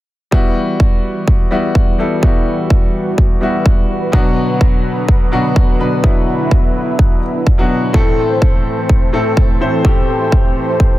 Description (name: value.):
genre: EDM, festival progressive house.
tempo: 126 BPM.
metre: 4/4.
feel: straight.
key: E minor.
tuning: A4 = 440 Hz.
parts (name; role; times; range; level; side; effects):
warm grand piano; accompaniment; 0.3-11.0 s; A2 to C5; -17 LUFS; left 1 dB; sidechain pumping, digital delay.
lush unison pad; sustained chords; 0.3-11.0 s; D3 to C5; -21 LUFS; equal; chorus, sidechain pumping.
electronic kick drum; drums; 0.3-10.9 s; none; -12 LUFS; equal; none.
room: studio reverb.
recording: none.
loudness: -11 LUFS.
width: side -16 dB against mid.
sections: 0.3-11.0 A section.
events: filter sweep on analog synth pad 0.3-11.0.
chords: 0.3 Emadd9; 4.1 Bm; 7.9 Am.